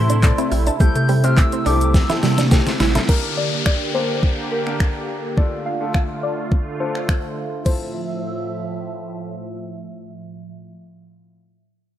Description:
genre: dance-pop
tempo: 105 BPM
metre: 4/4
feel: straight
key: F major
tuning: A4 = 440 Hz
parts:
  - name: hollow clarinet-like synth lead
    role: melody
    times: 0.0-2.5 s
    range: C6 to G6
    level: -26 LUFS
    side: left 1 dB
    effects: chorus, ping-pong delay
  - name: clear concert grand piano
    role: accompaniment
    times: 0.0-11.4 s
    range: A3 to D5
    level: -28 LUFS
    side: left 5 dB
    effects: sidechain pumping, low-pass filter
  - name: sweeping resonant pad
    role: sustained chords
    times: 0.0-10.7 s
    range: A2 to E5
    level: -26 LUFS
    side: right 2 dB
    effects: chorus, sidechain pumping, low-pass filter
  - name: mallet-like synth pluck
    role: arpeggios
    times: 0.0-3.1 s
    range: G3 to A5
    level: -26 LUFS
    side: right 1 dB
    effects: chorus, phaser, sidechain pumping, ping-pong delay
  - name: warm sub bass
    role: bass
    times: 0.0-3.0 s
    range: A1 to C3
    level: -18 LUFS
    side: equal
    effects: sidechain pumping
  - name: direct-recorded clean electric guitar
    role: riff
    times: 0.1-3.0 s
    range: A3 to E4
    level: -27 LUFS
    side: right 6 dB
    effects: analog chorus
  - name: pop drum kit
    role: drums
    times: 0.1-7.8 s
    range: crash cymbal, finger snaps, handclaps, hi-hat, kick drum, shaker, snare drum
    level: -18 LUFS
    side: equal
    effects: overdrive
  - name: soft round pluck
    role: melody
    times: 3.1-9.3 s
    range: Bb4 to F5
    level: -27 LUFS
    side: left 2 dB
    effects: chorus, sidechain pumping, low-pass filter, ping-pong delay
  - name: downlifter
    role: sound effects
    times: 3.1-7.7 s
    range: none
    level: -28 LUFS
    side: left 5 dB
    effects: none
room: light reverb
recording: rough home demo mix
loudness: -17 LUFS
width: side -11 dB against mid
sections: 0.0-3.1 A section; 3.1-7.7 B section; 7.7-9.9 C section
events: drum fill 1.9-3.1; filter sweep 3.1-7.7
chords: 0.0 Am; 0.8 C6; 3.1 Gm; 5.4 Dm; 7.7 Fmaj7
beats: 0.23 | 0.80 1.37 1.95 2.52 | 3.09 3.66 4.23 4.80 | 5.37 5.95 6.52 7.09 | 7.66 8.23 8.80 9.37

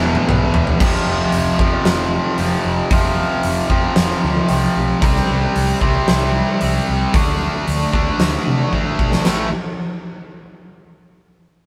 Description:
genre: hard rock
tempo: 113 BPM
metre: 4/4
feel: straight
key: unclear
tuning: A4 = 441 Hz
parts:
  - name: distorted electric guitar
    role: riff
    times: 0.0-9.5 s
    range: E2 to D4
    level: -24 LUFS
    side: equal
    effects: overdrive
  - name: tight distorted guitar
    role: riff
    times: 0.0-9.5 s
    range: E2 to D4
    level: -23 LUFS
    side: equal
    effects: distortion
  - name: hollow-body short-scale picked electric bass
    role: bass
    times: 0.0-9.5 s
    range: E1 to C3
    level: -25 LUFS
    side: equal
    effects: none
  - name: huge arena drum kit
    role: drums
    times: 0.1-9.4 s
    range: crash cymbal, hi-hat, kick drum, snare drum, toms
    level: -22 LUFS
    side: equal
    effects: none
room: moderate studio reverb, RT60 0.7 s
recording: band playing live in one room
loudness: -17 LUFS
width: mono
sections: 0.8-9.3 A section; 9.3-11.4 B section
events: drum fill 0.0-0.8, 8.7-9.3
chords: 0.0 E5; 0.8 F5; 5.0 C5; 7.1 D5; 9.3 A5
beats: 0.28 | 0.80 1.33 1.85 2.38 | 2.91 3.44 3.96 4.49 | 5.02 5.55 6.08 6.61 | 7.14 7.67 8.20 8.73 | 9.26

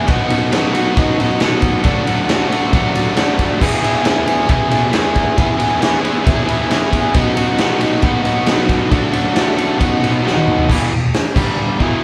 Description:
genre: garage rock duo or trio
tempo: 136 BPM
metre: 4/4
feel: straight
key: E major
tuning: A4 = 439 Hz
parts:
  - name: overdriven electric guitar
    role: riff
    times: 0.0-12.0 s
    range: E2 to G#4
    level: -18 LUFS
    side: equal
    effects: none
  - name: raw garage drum kit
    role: drums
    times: 0.1-11.9 s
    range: crash cymbal, hi-hat, kick drum, ride cymbal, snare drum, toms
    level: -19 LUFS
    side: equal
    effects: none
room: moderate studio reverb, RT60 0.6 s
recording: band playing live in one room, faint mains hum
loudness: -15 LUFS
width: mono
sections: 0.0-10.7 A section; 10.7-12.0 B section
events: drum fill 10.2-10.7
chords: 0.1 B; 1.9 D; 3.6 E; 7.1 B; 8.9 D; 9.8 B; 10.7 E5; 11.4 G5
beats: | 0.09 0.53 0.97 1.41 | 1.85 2.29 2.73 3.17 | 3.62 4.06 4.50 4.94 | 5.38 5.82 6.26 6.71 | 7.15 7.59 8.03 8.47 | 8.92 9.36 9.80 10.25 | 10.69 11.14 11.58 12.03

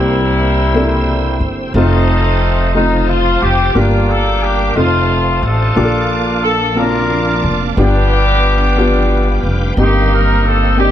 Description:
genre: gospel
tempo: 60 BPM (dotted quarters)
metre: 6/8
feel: straight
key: Bb major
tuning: A4 = 439 Hz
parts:
  - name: clear horn section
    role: melody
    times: 0.0-10.9 s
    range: G3 to Bb4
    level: -16 LUFS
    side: left 1 dB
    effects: none
  - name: warm upright piano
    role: accompaniment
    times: 0.0-10.9 s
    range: G2 to A5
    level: -18 LUFS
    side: left 1 dB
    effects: none
  - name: bright tonewheel organ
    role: sustained chords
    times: 0.0-10.9 s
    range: Bb3 to E6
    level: -23 LUFS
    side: right 3 dB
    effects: slow rotary speaker, chorus vibrato
  - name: upright bass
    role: bass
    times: 0.0-10.9 s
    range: F1 to C2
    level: -15 LUFS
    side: equal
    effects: none
  - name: rich studio string section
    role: sustained chords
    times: 5.8-10.9 s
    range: Eb3 to D4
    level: -26 LUFS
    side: right 2 dB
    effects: none
room: light reverb, small room ambience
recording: none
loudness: -11 LUFS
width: side -11 dB against mid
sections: 0.0-10.9 A section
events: none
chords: 0.0 C7; 1.7 F7; 3.8 Gm7; 4.8 F7; 5.8 Bbmaj7; 7.8 G7; 9.8 Cm7/G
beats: 0.74 | 1.75 2.75 | 3.76 4.76 | 5.76 6.77 | 7.77 8.77 | 9.78 10.78

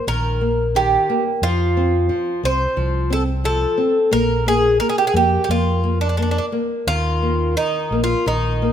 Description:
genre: fado-style ballad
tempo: 88 BPM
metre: 4/4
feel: rubato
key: Eb major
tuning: A4 = 440 Hz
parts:
  - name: Irish bouzouki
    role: melody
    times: 0.0-8.7 s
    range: D4 to C5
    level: -19 LUFS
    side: right 1 dB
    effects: none
  - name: nylon-string guitar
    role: accompaniment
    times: 0.0-8.7 s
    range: Eb3 to C4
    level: -23 LUFS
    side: left 1 dB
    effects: none
  - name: fingered electric bass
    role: bass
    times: 0.1-8.7 s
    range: Bb1 to F2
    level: -21 LUFS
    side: equal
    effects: none
room: moderate recital hall reverb, RT60 1.6 s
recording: close, detailed microphones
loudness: -16 LUFS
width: side -9 dB against mid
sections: 0.0-8.7 A section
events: none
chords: 0.0 Eb5; 1.4 F; 4.1 Bb5; 6.9 Eb5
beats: 0.07 0.75 | 1.43 2.10 2.78 3.45 | 4.12 4.80 5.49 6.17 | 6.86 7.56 8.26

